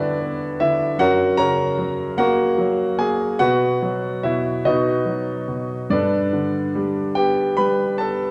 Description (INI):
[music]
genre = classical, lyrical solo piano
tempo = 47-51 BPM (dotted quarters)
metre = 6/8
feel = rubato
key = unclear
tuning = A4 = 442 Hz
[part]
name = clear grand piano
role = solo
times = 0.0-8.3 s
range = F#2 to B5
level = -20 LUFS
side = equal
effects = none
[sound]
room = wet recital hall reverb, RT60 1.6 s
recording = none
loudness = -20 LUFS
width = mono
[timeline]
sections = 0.0-8.3 A section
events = none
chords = 0.0 G; 1.0 F#; 3.4 Bsus4; 4.7 B; 5.9 Gadd9